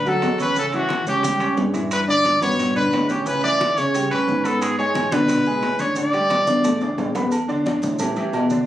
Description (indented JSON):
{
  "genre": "latin, salsa",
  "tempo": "178 BPM",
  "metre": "4/4",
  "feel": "straight",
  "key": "unclear",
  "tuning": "A4 = 439 Hz",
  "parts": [
    { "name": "bright trumpet", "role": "melody", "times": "0.0-6.9 s", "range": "F#4 to D5", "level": "-20 LUFS", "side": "equal", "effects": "none" },
    { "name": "tine electric piano", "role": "bass", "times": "0.0-8.7 s", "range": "A1 to C#3", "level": "-26 LUFS", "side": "equal", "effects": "slow stereo tremolo" },
    { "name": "clear baby grand piano", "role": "accompaniment", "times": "0.1-8.6 s", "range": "B2 to D6", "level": "-22 LUFS", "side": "right 1 dB", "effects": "none" },
    { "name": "bongos and cowbell", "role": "percussion", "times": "0.1-8.5 s", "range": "none", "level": "-32 LUFS", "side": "left 3 dB", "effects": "none" },
    { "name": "congas", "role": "percussion", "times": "0.1-8.7 s", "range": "none", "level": "-31 LUFS", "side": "equal", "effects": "none" },
    { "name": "maracas", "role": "percussion", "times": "0.1-8.7 s", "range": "none", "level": "-38 LUFS", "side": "right 2 dB", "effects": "none" },
    { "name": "timbales and agogo bells", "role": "percussion", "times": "0.2-8.5 s", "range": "none", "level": "-31 LUFS", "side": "right 4 dB", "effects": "none" }
  ],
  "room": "moderate studio reverb, RT60 0.6 s",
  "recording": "recorded on a phone in the room, club reverb",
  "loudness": "-18 LUFS",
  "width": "side -12 dB against mid",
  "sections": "0.0-7.3 A section; 7.3-8.7 B section",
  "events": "drum fill 1.2-1.9, 6.3-7.3",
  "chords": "0.0 Gmaj7 (rootless); 0.6 A7; 1.9 G6; 3.3 A9; 4.6 Bm13; 6.0 A7sus4; 7.3 E7sus4; 8.0 A5"
}